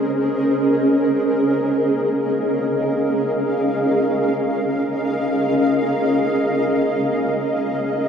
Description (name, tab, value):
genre	ambient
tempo	free time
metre	none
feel	none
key	Db major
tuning	A4 = 439 Hz
part	granular cloud pad	solo	0.0-8.1 s	Db4 to F5	-17 LUFS	equal	built-in reverb
room	wet cathedral reverb, RT60 6.9 s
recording	in a vast, echoing space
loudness	-17 LUFS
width	side -7 dB against mid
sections	0.0-8.1 A section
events	none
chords	0.0 Db6